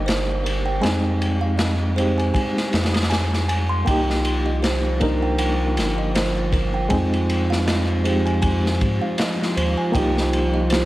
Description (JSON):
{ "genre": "trip hop", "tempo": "79 BPM", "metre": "4/4", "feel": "swing 57% on 16ths", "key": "unclear", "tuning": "A4 = 439 Hz", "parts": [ { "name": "reed electric piano", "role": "accompaniment", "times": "0.0-10.9 s", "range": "Ab3 to Bb4", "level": "-25 LUFS", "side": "equal", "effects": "overdrive, fast tremolo, vintage 12-bit sampler grit, tape echo" }, { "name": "music box", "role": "arpeggios", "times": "0.0-10.9 s", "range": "Bb4 to Eb6", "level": "-27 LUFS", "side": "right 2 dB", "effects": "ping-pong delay" }, { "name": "round analog bass", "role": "bass", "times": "0.0-10.9 s", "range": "G1 to Ab2", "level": "-23 LUFS", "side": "equal", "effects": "none" }, { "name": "wind-like tuned noise texture", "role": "texture", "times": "0.0-10.9 s", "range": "G3 to G4", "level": "-37 LUFS", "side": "right 1 dB", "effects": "none" }, { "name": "crunchy breakbeat drum kit", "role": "drums", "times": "0.1-10.9 s", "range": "kick drum, ride cymbal, snare drum", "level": "-24 LUFS", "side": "equal", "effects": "none" }, { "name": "dark analog pad", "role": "sustained chords", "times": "3.9-10.9 s", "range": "F3 to F4", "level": "-27 LUFS", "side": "equal", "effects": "lush chorus" } ], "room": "studio reverb", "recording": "vinyl crackle", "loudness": "-18 LUFS", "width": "side -16 dB against mid", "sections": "0.0-10.9 A section", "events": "none", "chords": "0.0 Cm7; 0.8 Fm7; 3.9 Cm7; 6.9 Fm7; 9.9 Cm7" }